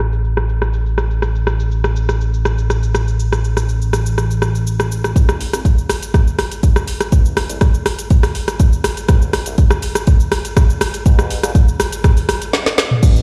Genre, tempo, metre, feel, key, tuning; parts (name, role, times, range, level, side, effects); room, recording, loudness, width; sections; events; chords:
afro house; 122 BPM; 4/4; straight; A minor; A4 = 440 Hz
smooth synth bass; bass; 0.0-13.2 s; A1 to C2; -20 LUFS; equal; sidechain pumping, high-pass filter
afro-pop drum kit; drums; 0.0-13.2 s; cabasa, crash cymbal, hi-hat, rim click, snare drum, toms; -22 LUFS; equal
electronic kick drum; drums; 5.2-13.1 s; -14 LUFS; equal
light reverb; played on a big sound system in a bare room, large studio reverb, low-pass filter; -16 LUFS; mono
0.0-5.2 A section; 5.2-13.0 B section
filter sweep 0.0-5.2; build-up 5.2-13.0; drum fill 12.5-13.0